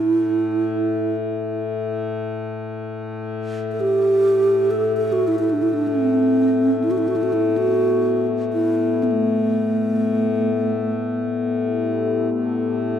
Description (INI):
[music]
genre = world meditative, free-time meditation music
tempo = free time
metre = none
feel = none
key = A dorian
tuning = A4 = 439 Hz
[part]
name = breathy mellow bass flute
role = melody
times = 0.0-10.9 s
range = A3 to A4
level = -19 LUFS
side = right 2 dB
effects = tape echo
[part]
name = hand-pumped harmonium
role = drone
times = 0.0-13.0 s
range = A2 to A3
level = -24 LUFS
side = left 5 dB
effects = none
[part]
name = glass harmonica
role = texture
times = 7.4-13.0 s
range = B3 to A4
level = -24 LUFS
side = left 3 dB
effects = none
[sound]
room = wet church reverb, RT60 3.4 s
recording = dark, warm production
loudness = -18 LUFS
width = side -9 dB against mid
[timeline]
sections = 0.0-12.3 A section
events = none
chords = none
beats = free time